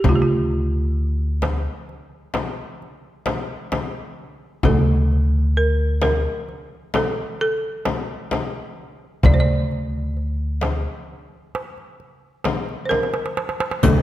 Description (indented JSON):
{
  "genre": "Turkish makam ensemble",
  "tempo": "130 BPM (eighths)",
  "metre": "10/8",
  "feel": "straight",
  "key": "D minor",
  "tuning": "A4 = 440 Hz",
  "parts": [
    { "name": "upright bass", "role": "bass", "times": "0.0-14.0 s", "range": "D2", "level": "-19 LUFS", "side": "equal", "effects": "none" },
    { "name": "frame drum", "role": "percussion", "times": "0.0-14.0 s", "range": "none", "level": "-25 LUFS", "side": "left 4 dB", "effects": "none" },
    { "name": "folk marimba with medium hard mallets", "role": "melody", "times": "0.1-14.0 s", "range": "F4 to D5", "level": "-24 LUFS", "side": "right 2 dB", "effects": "none" },
    { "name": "darbuka", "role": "percussion", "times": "0.1-14.0 s", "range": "none", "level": "-25 LUFS", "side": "right 3 dB", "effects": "none" },
    { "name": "clear studio cello section", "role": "drone", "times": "13.8-14.0 s", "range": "D2", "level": "-25 LUFS", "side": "equal", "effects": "none" },
    { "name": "riq", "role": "percussion", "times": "13.8-14.0 s", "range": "none", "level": "-27 LUFS", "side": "left 7 dB", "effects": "none" }
  ],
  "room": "moderate concert hall reverb, RT60 1.9 s",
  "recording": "none",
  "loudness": "-19 LUFS",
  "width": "side -14 dB against mid",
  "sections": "0.0-13.8 A section",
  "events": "drum fill 12.9-13.8",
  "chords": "none"
}